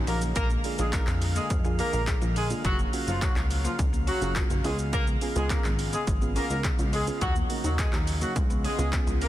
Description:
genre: dance-pop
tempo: 105 BPM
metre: 4/4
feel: straight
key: unclear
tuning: A4 = 440 Hz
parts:
  - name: soft round pluck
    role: accompaniment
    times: 0.0-9.3 s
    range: Bb3 to Ab4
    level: -36 LUFS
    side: right 4 dB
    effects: chorus, sidechain pumping
  - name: pipe organ, flutes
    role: sustained chords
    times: 0.0-9.3 s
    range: Db3 to F5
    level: -38 LUFS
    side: left 1 dB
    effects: sidechain pumping
  - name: plucky analog bass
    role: bass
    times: 0.0-9.3 s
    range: Gb1 to F2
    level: -29 LUFS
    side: equal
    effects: sidechain pumping
  - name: warm horn section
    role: melody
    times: 0.1-9.3 s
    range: F3 to Bb4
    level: -32 LUFS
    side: equal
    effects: sidechain pumping, dub echo
  - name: mallet-like synth pluck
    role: arpeggios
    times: 0.1-9.3 s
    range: Gb3 to Ab4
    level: -40 LUFS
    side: left 4 dB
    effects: chorus, sidechain pumping, dub echo
  - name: punchy analog drum machine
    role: drums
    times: 0.1-9.3 s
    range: handclaps, hi-hat, kick drum, shaker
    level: -28 LUFS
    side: equal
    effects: none
room: light reverb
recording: dense, heavily limited modern master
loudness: -24 LUFS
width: side -14 dB against mid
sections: 0.0-9.3 A section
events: none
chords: 0.4 Bb7; 2.6 Gbmaj7; 4.6 Db7; 7.2 Ebm7; 8.4 Db7

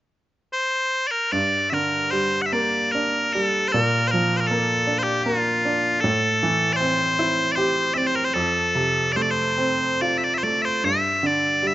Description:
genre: celtic folk, Celtic slow air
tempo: 69-80 BPM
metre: 3/4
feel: rubato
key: G dorian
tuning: A4 = 440 Hz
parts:
  - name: loud bright bagpipes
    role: melody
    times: 0.5-11.7 s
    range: F4 to F#5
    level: -20 LUFS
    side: left 1 dB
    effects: none
  - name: bright upright piano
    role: accompaniment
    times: 1.3-11.7 s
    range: F2 to G4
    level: -24 LUFS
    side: right 2 dB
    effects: none
room: light reverb, studio reverb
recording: rough home demo mix, nothing above 7.6 kHz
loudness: -19 LUFS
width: side -15 dB against mid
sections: 0.0-1.3 A section; 1.3-11.7 B section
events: none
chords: 0.0 N.C.; 1.3 Gm; 3.7 Bb; 6.0 Am7; 8.3 F; 10.9 G5

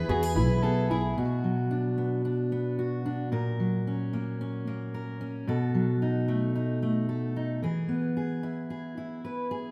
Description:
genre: acoustic folk duo or small band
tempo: 112 BPM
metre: 4/4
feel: straight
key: B dorian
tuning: A4 = 440 Hz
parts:
  - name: mellow electric guitar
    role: melody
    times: 0.0-0.6 s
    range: none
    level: barely audible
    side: none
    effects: none
  - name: dark fiddle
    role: second line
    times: 0.0-1.1 s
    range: G#4 to B4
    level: -35 LUFS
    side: equal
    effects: none
  - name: fingerpicked steel-string acoustic guitar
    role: accompaniment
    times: 0.0-9.7 s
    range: A#2 to B4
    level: -30 LUFS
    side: equal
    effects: none
  - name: felt-muted upright piano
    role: arpeggios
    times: 0.0-1.2 s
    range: B3 to G#4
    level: -34 LUFS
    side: equal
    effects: none
  - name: upright bass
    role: bass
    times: 0.0-1.1 s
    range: B1 to E2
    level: -29 LUFS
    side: equal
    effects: none
room: moderate concert hall reverb, RT60 2.2 s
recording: none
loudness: -29 LUFS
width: mono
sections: 0.0-1.2 A section; 1.2-9.7 B section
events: none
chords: 0.0 E; 1.2 Bm; 3.3 F#/A#; 5.5 B7; 7.6 E

